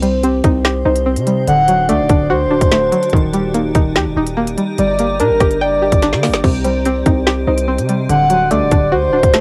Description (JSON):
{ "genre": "hip hop, drill", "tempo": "145 BPM", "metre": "4/4", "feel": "half-time", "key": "unclear", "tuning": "A4 = 440 Hz", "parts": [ { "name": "string-like resonator pluck", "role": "accompaniment", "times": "0.0-9.4 s", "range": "C3 to G5", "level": "-21 LUFS", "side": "equal", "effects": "chorus, cassette tape" }, { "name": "granular cloud pad", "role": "sustained chords", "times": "0.6-9.4 s", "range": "Eb4 to C6", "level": "-30 LUFS", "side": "equal", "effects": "built-in reverb, cassette tape" }, { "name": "muted felt-like synth keys", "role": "arpeggios", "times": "0.0-9.4 s", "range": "D3 to C5", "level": "-22 LUFS", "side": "equal", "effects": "chorus, cassette tape, tape echo" }, { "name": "hard-hitting 808-style bass", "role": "bass", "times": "0.0-9.4 s", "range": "D1 to D3", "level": "-23 LUFS", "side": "equal", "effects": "none" }, { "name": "drill drum kit", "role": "drums", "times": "0.0-9.4 s", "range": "crash cymbal, hi-hat, kick drum, rim click, snare drum", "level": "-18 LUFS", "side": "equal", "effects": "cassette tape" }, { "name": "breathy flute-like synth lead", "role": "second line", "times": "1.5-9.4 s", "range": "Bb4 to F#5", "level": "-18 LUFS", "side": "equal", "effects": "chorus, cassette tape, tape echo" } ], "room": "light reverb", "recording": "home recording on cassette", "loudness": "-14 LUFS", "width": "mono", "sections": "0.0-9.4 A section", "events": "drum fill 6.0-6.4", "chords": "0.0 Cm; 1.5 D; 3.1 Eb; 4.8 Gm; 6.4 Cm; 8.1 D", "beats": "0.23 0.65 1.06 | 1.47 1.89 2.30 2.72 | 3.13 3.54 3.96 4.37 | 4.79 5.20 5.61 6.03 | 6.44 6.85 7.27 7.68 | 8.10 8.51 8.92 9.34" }